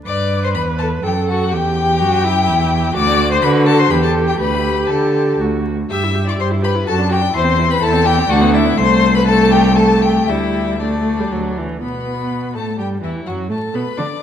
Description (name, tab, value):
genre	quick classical-period movement for string quartet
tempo	124 BPM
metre	3/4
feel	rubato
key	G major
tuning	A4 = 440 Hz
part	clear violin	melody	0.1-14.2 s	D5 to E6	-20 LUFS	left 7 dB	none
part	rich violin	second line	0.1-14.2 s	D4 to E5	-21 LUFS	left 2 dB	none
part	clear viola	accompaniment	0.1-14.1 s	E3 to B4	-20 LUFS	equal	none
part	rich cello	bass	0.1-14.1 s	C2 to D3	-18 LUFS	right 2 dB	none
room	moderate concert hall reverb, RT60 1.7 s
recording	dark, warm production, vinyl crackle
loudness	-13 LUFS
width	side -9 dB against mid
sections	0.1-11.8 A section; 11.8-14.2 B section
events	none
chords	0.1 G; 1.5 Emadd9; 3.0 D; 3.9 Em; 4.4 Dsus4; 5.4 D; 5.9 Em/G; 6.9 D/F#; 7.4 C/E; 8.3 Bm/D; 8.8 Am/C; 10.3 G5/D; 11.3 D; 11.8 Asus2; 12.8 Em; 13.3 D/F#